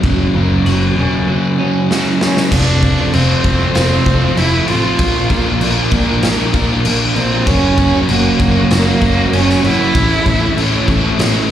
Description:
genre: quiet-loud alternative rock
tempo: 97 BPM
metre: 4/4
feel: straight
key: unclear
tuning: A4 = 440 Hz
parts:
  - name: twelve-string electric guitar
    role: arpeggios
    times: 0.0-2.5 s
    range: F#2 to F#4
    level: -21 LUFS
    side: right 4 dB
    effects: harmonic tremolo
  - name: overdriven semi-hollow guitar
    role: riff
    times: 0.0-11.5 s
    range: F2 to Bb4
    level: -19 LUFS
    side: right 8 dB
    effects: harmonic tremolo
  - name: thick fuzz guitar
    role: riff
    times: 0.0-11.5 s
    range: F2 to Bb4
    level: -18 LUFS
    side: left 7 dB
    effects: distortion
  - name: picked electric bass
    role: bass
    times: 0.0-11.4 s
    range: E1 to Bb1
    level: -18 LUFS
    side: equal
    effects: none
  - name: raw garage drum kit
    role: drums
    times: 0.0-11.3 s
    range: crash cymbal, kick drum, snare drum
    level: -17 LUFS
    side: equal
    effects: none
  - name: rich cello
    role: melody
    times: 2.2-10.9 s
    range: A#3 to F4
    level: -18 LUFS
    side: right 2 dB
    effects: tape echo
  - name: string machine, cellos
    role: sustained chords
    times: 2.5-11.5 s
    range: A4 to D6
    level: -28 LUFS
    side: left 1 dB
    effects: none
room: studio reverb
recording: live gig heard through the venue's PA, club reverb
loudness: -11 LUFS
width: side -10 dB against mid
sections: 0.0-2.5 A section; 2.5-11.5 B section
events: drum fill 1.9-2.5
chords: 0.0 F#; 2.5 F; 5.0 Bb; 7.5 F#; 9.9 A

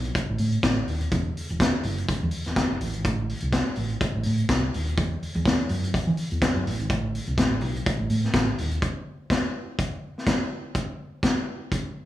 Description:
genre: disco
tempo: 124 BPM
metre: 4/4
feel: swing 56% on 16ths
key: unclear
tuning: A4 = 440 Hz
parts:
  - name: hollow-body short-scale fingered electric bass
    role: bass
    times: 0.0-8.8 s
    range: D#1 to E3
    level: -26 LUFS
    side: equal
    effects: none
  - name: vintage drum kit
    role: drums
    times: 0.1-11.8 s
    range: hi-hat, kick drum, snare drum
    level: -25 LUFS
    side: equal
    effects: none
room: light reverb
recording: small room reverb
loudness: -23 LUFS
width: side -14 dB against mid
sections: 0.0-8.8 A section; 8.8-12.1 B section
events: none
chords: none

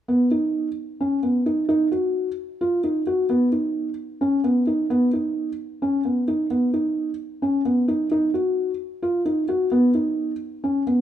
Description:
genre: contemporary instrumental, contemporary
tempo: 262 BPM (eighths)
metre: 7/8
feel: straight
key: B lydian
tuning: A4 = 440 Hz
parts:
  - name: felt-muted upright piano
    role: solo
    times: 0.1-11.0 s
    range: B3 to F#4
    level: -20 LUFS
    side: equal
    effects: none
room: light reverb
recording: minimal, uncompressed stereo recording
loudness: -20 LUFS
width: side -10 dB against mid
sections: 0.1-11.0 A section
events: none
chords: none

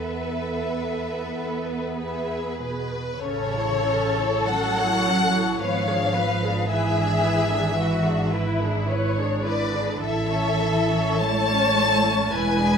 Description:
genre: classical, slow romantic movement for string orchestra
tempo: 45-56 BPM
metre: 3/4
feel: rubato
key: A major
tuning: A4 = 441 Hz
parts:
  - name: rich chamber violin section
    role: melody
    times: 0.0-12.8 s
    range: B4 to A5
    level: -25 LUFS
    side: left 4 dB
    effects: none
  - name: warm symphonic violin section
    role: second line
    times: 0.0-12.8 s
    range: E4 to C#5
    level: -28 LUFS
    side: left 1 dB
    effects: none
  - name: rich chamber viola section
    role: accompaniment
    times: 0.0-12.8 s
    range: B3 to C#5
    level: -29 LUFS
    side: right 2 dB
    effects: none
  - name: rich studio double bass section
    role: bass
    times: 0.0-12.8 s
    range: E1 to E2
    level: -29 LUFS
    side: right 2 dB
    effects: none
  - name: warm chamber cello section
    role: bass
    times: 0.0-12.8 s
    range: B2 to B3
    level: -28 LUFS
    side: right 2 dB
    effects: none
room: wet recital hall reverb, RT60 1.5 s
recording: minimal, uncompressed stereo recording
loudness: -21 LUFS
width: side -6 dB against mid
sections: 0.0-3.2 A section; 3.2-12.8 B section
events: none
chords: 0.0 Esus4; 2.0 E; 3.2 A; 5.6 G#dim7; 6.7 E7/G#; 10.0 A

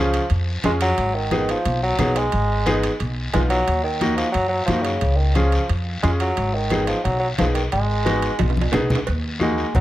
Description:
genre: latin, cumbia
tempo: 178 BPM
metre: 4/4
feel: straight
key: G# dorian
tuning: A4 = 441 Hz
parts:
  - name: warm bassoon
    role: melody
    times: 0.0-9.8 s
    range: C#3 to G#3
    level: -23 LUFS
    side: right 1 dB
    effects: tape echo
  - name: clear upright piano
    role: accompaniment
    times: 0.0-9.6 s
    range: A#3 to G#4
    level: -24 LUFS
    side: equal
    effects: none
  - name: upright bass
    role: bass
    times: 0.0-9.8 s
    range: G#1 to F#2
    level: -22 LUFS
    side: equal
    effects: none
  - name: guiro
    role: percussion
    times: 0.1-9.8 s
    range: none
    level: -33 LUFS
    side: left 3 dB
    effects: none
  - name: timbales and cowbell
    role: percussion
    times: 0.1-9.8 s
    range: none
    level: -32 LUFS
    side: right 6 dB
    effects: none
  - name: congas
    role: percussion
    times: 0.3-9.8 s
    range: none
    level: -27 LUFS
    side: left 2 dB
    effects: none
room: light reverb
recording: none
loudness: -18 LUFS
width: side -14 dB against mid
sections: 0.0-9.1 A section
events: drum fill 8.4-9.1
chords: 0.0 C#; 1.0 G#m; 3.7 D#m; 5.0 C#; 6.4 G#m; 9.1 D#m

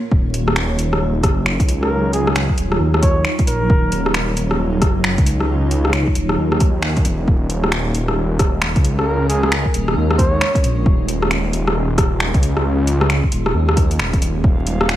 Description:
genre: future garage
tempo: 134 BPM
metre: 4/4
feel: swing 62% on 16ths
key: Eb minor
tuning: A4 = 440 Hz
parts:
  - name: granular cloud pad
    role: sustained chords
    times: 0.0-15.0 s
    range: Gb3 to Db5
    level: -25 LUFS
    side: equal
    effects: built-in reverb, sidechain pumping
  - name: swelling detuned saw bass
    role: bass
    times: 0.1-15.0 s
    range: Eb1 to Eb2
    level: -19 LUFS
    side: equal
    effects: sidechain pumping
  - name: electronic kick drum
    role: drums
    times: 0.1-14.6 s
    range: none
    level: -16 LUFS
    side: equal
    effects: overdrive
  - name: deep house drum kit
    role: drums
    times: 0.3-15.0 s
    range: finger snaps, hi-hat, rim click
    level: -21 LUFS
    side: equal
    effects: overdrive
  - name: trumpet with bucket mute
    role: melody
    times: 1.8-4.1, 9.0-10.6 s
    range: Ab4 to Db5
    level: -23 LUFS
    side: right 1 dB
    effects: dub echo
  - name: drifting glass-harmonics texture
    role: texture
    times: 14.5-15.0 s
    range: F5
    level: -30 LUFS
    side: right 4 dB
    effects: chorus, built-in reverb
room: light reverb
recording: vinyl crackle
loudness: -15 LUFS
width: side -13 dB against mid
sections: 0.0-14.4 A section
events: none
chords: 0.1 Ebm9; 7.3 Bbm7/Eb; 14.4 Ebm9

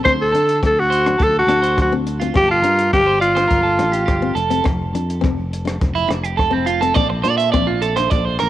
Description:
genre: highlife guitar band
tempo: 104 BPM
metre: 4/4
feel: straight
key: F major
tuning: A4 = 440 Hz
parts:
  - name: raspy tenor saxophone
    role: melody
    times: 0.0-4.3 s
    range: F4 to C5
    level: -15 LUFS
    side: equal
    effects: cassette tape
  - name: electric guitar at the edge of break-up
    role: arpeggios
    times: 0.0-8.5 s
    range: C4 to E5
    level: -21 LUFS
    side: right 6 dB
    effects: tape echo
  - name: nylon-string guitar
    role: accompaniment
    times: 0.1-8.5 s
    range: G3 to D4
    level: -25 LUFS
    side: left 8 dB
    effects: none
  - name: fingered electric bass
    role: bass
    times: 0.1-8.5 s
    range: F1 to D3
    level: -23 LUFS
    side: equal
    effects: none
  - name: compact cocktail drum kit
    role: drums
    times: 0.1-8.5 s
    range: hi-hat, kick drum, rim click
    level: -22 LUFS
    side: equal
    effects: cassette tape
room: light reverb, studio ambience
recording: home recording on cassette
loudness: -14 LUFS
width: side -13 dB against mid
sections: 0.0-4.7 A section; 4.7-8.5 B section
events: clean electric guitar solo 4.7-8.5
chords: 0.0 D5; 2.4 Gm7; 4.7 F5; 7.0 Bb

